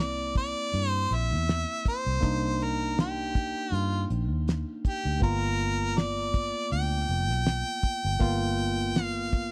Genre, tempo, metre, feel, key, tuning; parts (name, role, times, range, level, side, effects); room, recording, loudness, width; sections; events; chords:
straight-eighth soul blues; 80 BPM; 4/4; swing 56% on 16ths; A4 = 437 Hz
bright harmonica; melody; 0.0-9.5 s; G4 to G5; -33 LUFS; equal; overdrive
barky tine electric piano; accompaniment; 0.0-9.5 s; Bb3 to F4; -36 LUFS; equal
vintage muted fingered electric bass; bass; 0.0-9.5 s; F1 to G2; -32 LUFS; equal
cloth-damped thuddy drum kit; drums; 0.4-9.5 s; hi-hat, kick drum, snare drum; -29 LUFS; equal
small room ambience; dry, close 1970s-style studio recording; -28 LUFS; mono
0.0-9.5 A section
0.0 C7; 2.2 Cm7; 5.2 G7#9